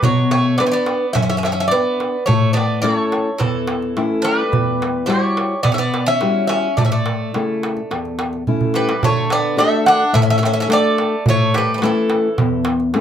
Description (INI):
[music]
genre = greek folk, Greek bouzouki band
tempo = 107 BPM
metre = 4/4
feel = straight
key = D major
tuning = A4 = 442 Hz
[part]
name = Greek bouzouki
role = melody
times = 0.0-12.6 s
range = A4 to F#5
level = -19 LUFS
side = equal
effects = plate reverb
[part]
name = Greek bouzouki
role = second line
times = 0.0-12.6 s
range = E3 to D4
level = -24 LUFS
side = right 2 dB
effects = none
[part]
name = fingerpicked steel-string acoustic guitar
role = accompaniment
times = 0.0-13.0 s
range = E2 to B4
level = -19 LUFS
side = left 3 dB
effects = none
[part]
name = darbuka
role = percussion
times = 0.0-13.0 s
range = none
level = -21 LUFS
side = right 4 dB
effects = none
[sound]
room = wet small room ambience, RT60 0.5 s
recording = none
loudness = -15 LUFS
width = side -9 dB against mid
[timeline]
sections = 0.0-9.0 A section; 9.0-13.0 B section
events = drum fill 8.5-9.0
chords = 0.0 Bm; 2.3 A; 4.5 Emadd9; 6.8 A; 9.0 D; 11.3 A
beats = | 0.03 0.59 1.16 1.72 | 2.28 2.84 3.41 3.97 | 4.53 5.09 5.65 6.21 | 6.78 7.34 7.90 8.46 | 9.02 9.58 10.14 10.70 | 11.26 11.82 12.38 12.94